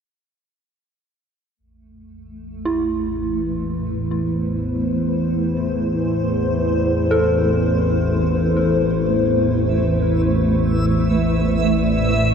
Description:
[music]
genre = ambient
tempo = free time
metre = none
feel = none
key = A minor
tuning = A4 = 439 Hz
[part]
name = granular cloud pad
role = sustained chords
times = 2.3-12.3 s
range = A3 to D5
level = -21 LUFS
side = equal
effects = built-in reverb
[part]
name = analog drone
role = drone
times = 2.6-12.3 s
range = A1 to E2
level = -20 LUFS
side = equal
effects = chorus
[part]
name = dark detuned synth bell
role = arpeggios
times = 2.7-12.3 s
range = E4 to A4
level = -26 LUFS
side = right 1 dB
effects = chorus, ping-pong delay
[part]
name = backwards swelling texture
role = texture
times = 9.7-12.3 s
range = E5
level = -26 LUFS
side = right 2 dB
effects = built-in reverb
[sound]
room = wet cathedral reverb, RT60 6.4 s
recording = in a vast, echoing space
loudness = -17 LUFS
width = side -7 dB against mid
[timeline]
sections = 1.6-12.3 A section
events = none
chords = 1.6 Am

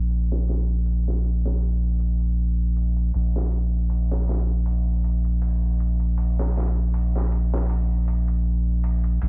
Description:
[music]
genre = trip hop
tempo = 79 BPM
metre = 4/4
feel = straight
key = unclear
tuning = A4 = 439 Hz
[part]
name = soft dub sub bass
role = bass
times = 0.0-9.3 s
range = Bb1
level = -20 LUFS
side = equal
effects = none
[part]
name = trip hop sampler-style drum kit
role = drums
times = 0.1-9.3 s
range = ride cymbal, snare drum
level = -37 LUFS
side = equal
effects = high-pass filter on cymbals, small room ambience, high-pass filter on snare
[sound]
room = little or no reverb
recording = vinyl crackle, low-pass filter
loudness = -20 LUFS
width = side -32 dB against mid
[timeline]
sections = 0.0-9.3 A section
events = filter sweep 0.0-9.3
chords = none

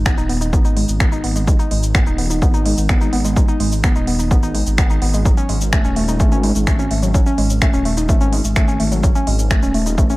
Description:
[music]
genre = melodic techno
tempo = 127 BPM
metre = 4/4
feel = straight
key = G# phrygian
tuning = A4 = 440 Hz
[part]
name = swelling detuned saw bass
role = bass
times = 0.0-10.2 s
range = D#1 to G#1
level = -19 LUFS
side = equal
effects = sidechain pumping
[part]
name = woody wave-folded pluck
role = arpeggios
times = 0.1-10.2 s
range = F#3 to D#4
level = -21 LUFS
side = equal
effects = chorus, sidechain pumping, analog delay
[part]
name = electronic kick drum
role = drums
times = 0.1-10.1 s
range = none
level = -16 LUFS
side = equal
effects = none
[part]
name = techno drum kit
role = drums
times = 0.1-10.2 s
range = finger snaps, hi-hat, shaker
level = -24 LUFS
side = equal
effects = none
[sound]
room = light reverb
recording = echo-heavy mix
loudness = -14 LUFS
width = side -20 dB against mid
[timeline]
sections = 0.0-10.2 A section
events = none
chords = 0.0 G#m; 5.3 F#m

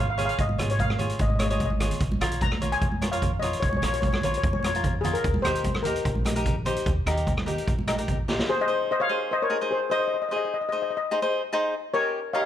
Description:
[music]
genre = calypso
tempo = 148 BPM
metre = 4/4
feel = straight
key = Ab major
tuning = A4 = 440 Hz
[part]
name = steel pan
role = melody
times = 0.0-12.5 s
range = Ab4 to Bb5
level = -27 LUFS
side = left 3 dB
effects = none
[part]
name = cavaquinho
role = accompaniment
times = 0.0-12.5 s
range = Eb4 to Db5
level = -29 LUFS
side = left 1 dB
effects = none
[part]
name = upright bass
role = bass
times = 0.0-8.4 s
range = Ab1 to F2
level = -29 LUFS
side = right 1 dB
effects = none
[part]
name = street-band drum kit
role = drums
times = 0.2-8.5 s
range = hi-hat, kick drum, rim click, snare drum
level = -28 LUFS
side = equal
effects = none
[part]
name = congas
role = percussion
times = 0.2-8.4 s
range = none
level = -33 LUFS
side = right 2 dB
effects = none
[sound]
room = light reverb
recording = close, detailed microphones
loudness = -23 LUFS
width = side -10 dB against mid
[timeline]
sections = 0.0-8.5 A section; 8.5-12.5 B section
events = drum fill 1.5-2.0, 8.3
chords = 0.0 Db/Ab; 2.0 Bbm; 5.2 Eb; 8.5 Ab; 11.7 Eb7

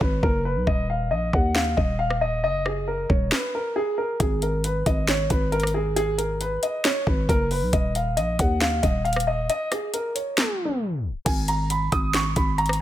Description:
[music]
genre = hip hop, trap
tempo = 136 BPM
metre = 4/4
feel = half-time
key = G# dorian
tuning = A4 = 440 Hz
[part]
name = dark grand piano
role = melody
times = 0.0-12.8 s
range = G#4 to D#6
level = -25 LUFS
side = equal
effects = low-pass filter, ping-pong delay
[part]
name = growling 808-style bass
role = bass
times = 0.0-12.8 s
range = D#1 to D#2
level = -25 LUFS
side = equal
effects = none
[part]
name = trap drum kit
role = drums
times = 0.0-12.8 s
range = crash cymbal, hi-hat, kick drum, rim click, snare drum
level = -24 LUFS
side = equal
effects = none
[sound]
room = digital ambience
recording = tape stop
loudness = -21 LUFS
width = side -12 dB against mid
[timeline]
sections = 0.0-11.3 A section; 11.3-12.8 B section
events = break 0.0-4.2, 9.5-11.3; kick muted 3.3-4.2; tape stop 10.4-11.3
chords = 0.0 G#m; 0.7 D#m; 4.2 G#m; 7.7 D#5; 11.3 G#m

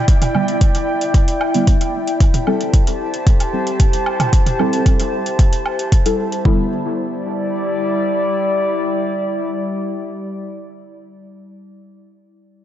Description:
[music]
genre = dub techno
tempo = 113 BPM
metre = 4/4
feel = straight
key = E minor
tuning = A4 = 439 Hz
[part]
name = warbly tape-like pad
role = sustained chords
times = 0.0-11.3 s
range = G3 to A5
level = -21 LUFS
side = equal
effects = chorus, built-in reverb, sidechain pumping
[part]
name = metallic inharmonic drone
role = texture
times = 0.0-6.5 s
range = E4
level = -31 LUFS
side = left 4 dB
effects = chorus, built-in reverb, sidechain pumping
[part]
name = electronic hi-hat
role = drums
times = 0.1-6.4 s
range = none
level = -29 LUFS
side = right 1 dB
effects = none
[part]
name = electronic kick drum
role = drums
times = 0.1-6.6 s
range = none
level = -13 LUFS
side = equal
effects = none
[part]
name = electronic toms and woodblock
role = percussion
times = 0.2-5.8 s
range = none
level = -25 LUFS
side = right 2 dB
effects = sidechain pumping on toms, sidechain pumping on perc, dub echo
[part]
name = deep mellow chord stab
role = stabs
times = 0.3-11.3 s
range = D3 to A4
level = -22 LUFS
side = equal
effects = chorus, phaser, sidechain pumping, dub echo
[sound]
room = moderate lush hall reverb, RT60 1.9 s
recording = dreamy mix soaked in reverb, nothing above 7.9 kHz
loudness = -15 LUFS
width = side -11 dB against mid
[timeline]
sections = 0.0-6.5 A section; 6.5-10.7 B section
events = filter sweep on synth stab 0.0-6.5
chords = 0.0 Em7; 2.2 Am7; 6.5 Em7

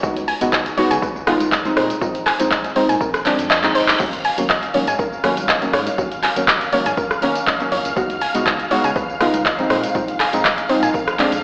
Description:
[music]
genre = deep house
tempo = 121 BPM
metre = 4/4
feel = swing 54% on 16ths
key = unclear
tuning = A4 = 442 Hz
[part]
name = soft round pluck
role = arpeggios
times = 0.0-11.0 s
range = E#4 to G#5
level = -26 LUFS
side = equal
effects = chorus, sidechain pumping, tape echo
[part]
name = deep mellow chord stab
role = stabs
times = 0.0-11.3 s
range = D#3 to F#4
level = -23 LUFS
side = equal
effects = chorus, sidechain pumping, analog delay
[part]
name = round analog bass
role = bass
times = 0.0-11.4 s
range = F#1 to C#3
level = -33 LUFS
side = equal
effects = sidechain pumping
[part]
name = electronic kick drum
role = drums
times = 0.0-11.0 s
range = none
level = -29 LUFS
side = equal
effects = none
[part]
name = punchy analog drum machine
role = drums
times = 0.0-11.4 s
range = crash cymbal, handclaps, hi-hat, rim click, tambourine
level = -23 LUFS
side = equal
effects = none
[part]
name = congas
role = percussion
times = 0.2-11.3 s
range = none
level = -37 LUFS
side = equal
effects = none
[part]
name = reverse cymbal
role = sound effects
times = 3.2-4.0 s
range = none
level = -30 LUFS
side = equal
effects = none
[part]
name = string machine, violins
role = texture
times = 4.0-11.4 s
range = E#5 to E#6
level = -29 LUFS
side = equal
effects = ensemble chorus
[sound]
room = wet echo chamber reverb, RT60 1.7 s, digital ambience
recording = played on a big sound system in a bare room, stone room reverb, AM radio sound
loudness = -18 LUFS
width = mono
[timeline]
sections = 0.0-11.4 A section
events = reverse cymbal 3.2-4.0; kick drops out 3.5-4.0; drum fill 3.6-4.0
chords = 0.0 C#9sus4; 1.8 A#9sus4; 4.0 G#9sus4; 8.0 C#9sus4; 9.7 A#9sus4

